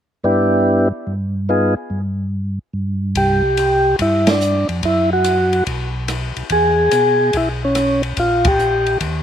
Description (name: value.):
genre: soul jazz organ trio.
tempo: 144 BPM.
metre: 4/4.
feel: swing 67% on 8ths.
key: unclear.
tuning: A4 = 439 Hz.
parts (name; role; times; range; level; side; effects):
percussive tonewheel organ; melody; 0.2-9.0 s; B3 to Ab4; -15 LUFS; equal; slow rotary speaker, slapback echo.
mellow tonewheel organ; bass; 0.2-9.2 s; Bb1 to B2; -21 LUFS; equal; chorus vibrato, slow rotary speaker.
open jazz drum kit; drums; 3.2-9.1 s; hi-hat, kick drum, ride cymbal, rim click, snare drum; -23 LUFS; left 2 dB; none.
room: little or no reverb.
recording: recorded outdoors, with no room sound.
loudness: -15 LUFS.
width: side -9 dB against mid.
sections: 0.0-3.2 A section; 3.2-9.2 B section.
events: band accent 4.2, 8.4.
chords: 0.0 Em7; 3.2 Csus2; 4.8 Esus2/F#; 5.7 N.C.; 6.5 E6; 8.2 Gm7/Bb.